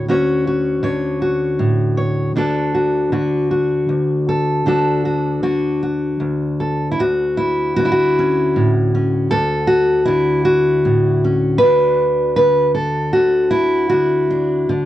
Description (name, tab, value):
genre	folk, solo fingerstyle acoustic guitar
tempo	52 BPM (dotted quarters)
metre	6/8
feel	rubato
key	D major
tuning	A4 = 440 Hz
part	fingerpicked steel-string acoustic guitar	solo	0.0-14.9 s	D2 to C#5	-14 LUFS	equal	none
room	light reverb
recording	worn, warbling old tape, cassette tape, warbly pitch drift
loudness	-14 LUFS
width	side -13 dB against mid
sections	0.0-7.0 A section; 7.0-14.9 B section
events	none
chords	0.0 Dmaj7; 2.4 D; 7.0 Dmaj7; 11.6 Bm7/D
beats	| 0.08 1.23 | 2.36 3.50 | 4.65 5.82 | 7.00 8.18 | 9.33 10.47 | 11.62 12.76 | 13.91